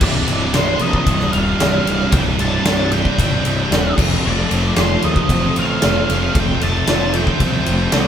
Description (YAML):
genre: quiet-loud alternative rock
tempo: 114 BPM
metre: 4/4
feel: straight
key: unclear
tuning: A4 = 439 Hz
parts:
  - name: octave-fuzz lead guitar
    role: melody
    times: 0.0-8.1 s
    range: C5 to A5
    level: -24 LUFS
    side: equal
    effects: distortion
  - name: fingerpicked plugged-in steel-string acoustic guitar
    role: arpeggios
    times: 0.0-8.1 s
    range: C2 to F4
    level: -24 LUFS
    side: right 3 dB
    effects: digital delay
  - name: scooped high-gain guitar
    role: riff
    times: 0.0-8.1 s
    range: C2 to F4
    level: -23 LUFS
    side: right 8 dB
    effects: distortion
  - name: sludgy distorted guitar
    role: riff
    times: 0.0-8.1 s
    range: C2 to F4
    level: -23 LUFS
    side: left 7 dB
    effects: overdrive
  - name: fuzz picked electric bass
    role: bass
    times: 0.0-8.1 s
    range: C1 to Eb2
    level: -20 LUFS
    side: equal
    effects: overdrive
  - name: big rock drum kit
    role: drums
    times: 0.0-8.1 s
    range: crash cymbal, kick drum, ride cymbal, snare drum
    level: -18 LUFS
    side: equal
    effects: none
room: moderate studio reverb, RT60 0.8 s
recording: band playing live in one room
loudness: -14 LUFS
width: side -9 dB against mid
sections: 0.0-8.1 A section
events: none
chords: 0.0 Csus2; 4.0 Fadd9